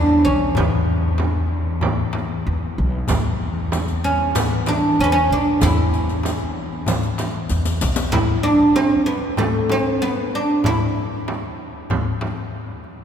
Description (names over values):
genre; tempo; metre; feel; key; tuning
Arabic maqam ensemble; 95 BPM; 4/4; straight; B maqam bayati from 8.1 s; A4 = 440 Hz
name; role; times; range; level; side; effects
oud; melody; 0.0-11.2 s; A3 to E4; -20 LUFS; right 1 dB; none
upright bass; bass; 0.0-8.1 s; B1 to E2; -23 LUFS; equal; none
rich studio cello section; drone; 0.0-8.2 s; E2; -29 LUFS; left 2 dB; none
darbuka; percussion; 0.5-12.9 s; none; -26 LUFS; left 3 dB; none
frame drum; percussion; 0.6-12.4 s; none; -26 LUFS; right 3 dB; none
riq; percussion; 3.1-8.1 s; none; -31 LUFS; left 5 dB; none
room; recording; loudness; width
wet cathedral reverb, RT60 4.8 s; recorded in a church or concert hall; -17 LUFS; side -8 dB against mid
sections
0.0-8.1 A section; 8.1-13.0 B section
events
drum fill 7.5-8.1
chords
none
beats
| 0.57 1.20 1.83 2.46 | 3.09 3.72 4.35 4.98 | 5.61 6.24 6.87 7.50 | 8.13 8.76 9.39 10.02 | 10.65 11.28 11.90 12.53